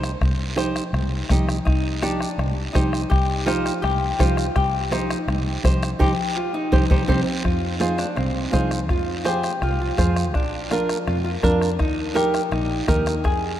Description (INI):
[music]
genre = latin, cumbia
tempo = 166 BPM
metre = 4/4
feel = straight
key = F dorian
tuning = A4 = 442 Hz
[part]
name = flamenco guitar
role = accompaniment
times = 0.0-13.1 s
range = D4 to Eb5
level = -26 LUFS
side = right 3 dB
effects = none
[part]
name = fingered electric bass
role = bass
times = 0.0-13.6 s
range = Bb1 to F2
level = -25 LUFS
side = equal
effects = none
[part]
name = bombo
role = percussion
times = 0.0-13.4 s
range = none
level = -23 LUFS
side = left 1 dB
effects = none
[part]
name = guiro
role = percussion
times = 0.0-13.6 s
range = none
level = -35 LUFS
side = right 4 dB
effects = none
[part]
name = congas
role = percussion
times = 0.2-13.4 s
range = none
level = -30 LUFS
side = left 1 dB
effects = none
[part]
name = vintage hollow-body jazz guitar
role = second line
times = 1.7-13.6 s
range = C4 to Ab4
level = -26 LUFS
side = left 2 dB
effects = none
[sound]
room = moderate cathedral reverb, RT60 6.4 s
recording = in a vast, echoing space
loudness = -19 LUFS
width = side -12 dB against mid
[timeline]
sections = 0.0-7.4 A section; 7.4-13.6 B section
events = band accent 6.0-7.4; drum fill 6.7-7.4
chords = 0.0 Cm; 7.4 Fm; 10.3 Bb; 11.8 Eb